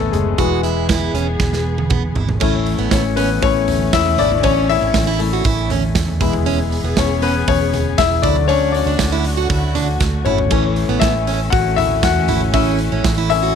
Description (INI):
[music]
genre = piano-driven pop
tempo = 118 BPM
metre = 4/4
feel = straight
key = A major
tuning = A4 = 438 Hz
[part]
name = clear baby grand piano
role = accompaniment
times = 0.0-13.6 s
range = E3 to F#5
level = -18 LUFS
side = left 11 dB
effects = none
[part]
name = warm studio string section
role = sustained chords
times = 0.0-13.6 s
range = D3 to G#4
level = -26 LUFS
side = right 1 dB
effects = none
[part]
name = vintage muted fingered electric bass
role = bass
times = 0.0-13.5 s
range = E1 to E2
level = -20 LUFS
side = right 1 dB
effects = none
[part]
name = modern studio drum kit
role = drums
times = 0.0-13.4 s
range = crash cymbal, hi-hat, kick drum, snare drum, toms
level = -21 LUFS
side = right 4 dB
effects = none
[part]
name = picked plugged-in steel-string acoustic guitar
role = riff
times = 0.4-13.5 s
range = B3 to F#4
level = -23 LUFS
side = right 13 dB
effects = none
[part]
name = tambourine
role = percussion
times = 2.4-13.4 s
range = none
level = -37 LUFS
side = left 14 dB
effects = none
[sound]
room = light reverb, small room ambience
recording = 1960s-style stereo with parts hard left and right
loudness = -14 LUFS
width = side -7 dB against mid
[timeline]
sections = 0.0-2.4 A section; 2.4-13.6 B section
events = grand piano solo 0.0-2.4, 2.4-13.6; drum fill 1.4-2.4, 10.0-10.5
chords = 0.4 E; 2.4 A; 6.2 E; 8.2 D; 10.5 A